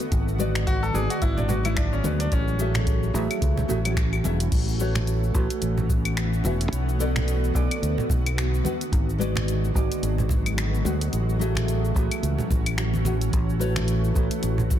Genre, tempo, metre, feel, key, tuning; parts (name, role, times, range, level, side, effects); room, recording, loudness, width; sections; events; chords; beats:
sunset chillout; 109 BPM; 4/4; swing 57% on 16ths; A4 = 445 Hz
shimmering ambient pad; sustained chords; 0.0-14.8 s; D3 to F#4; -31 LUFS; equal; chorus, built-in reverb, vintage 12-bit sampler grit
deep house drum kit; drums; 0.0-14.8 s; cabasa, claves, crash cymbal, finger snaps, hi-hat; -32 LUFS; left 2 dB; overdrive, small room ambience, soft clipping on snare
fingered electric bass; bass; 0.1-14.8 s; E1 to D2; -24 LUFS; equal
electronic kick drum; drums; 0.1-14.8 s; -24 LUFS; equal; small room ambience
nylon-string guitar; accompaniment; 0.4-14.7 s; G#3 to F#5; -30 LUFS; moving between left 6 dB and right 6 dB; auto-pan, ping-pong delay
clear concert grand piano; melody; 0.7-3.1 s; B3 to A4; -30 LUFS; left 2 dB; tape echo
congas; percussion; 1.4-14.8 s; -30 LUFS; right 3 dB
light reverb; dense, heavily limited modern master; -21 LUFS; side -10 dB against mid
0.0-4.5 A section; 4.5-14.8 A section
0.0 G#m7b5; 2.3 F#m7/A; 4.5 A69; 6.7 Bm9; 8.6 G#m7b5; 11.1 F#m7/A; 13.3 A69
| 0.12 0.67 1.22 1.77 | 2.32 2.87 3.42 3.97 | 4.52 5.07 5.62 6.17 | 6.72 7.27 7.82 8.37 | 8.92 9.47 10.03 10.58 | 11.13 11.68 12.23 12.78 | 13.33 13.88 14.43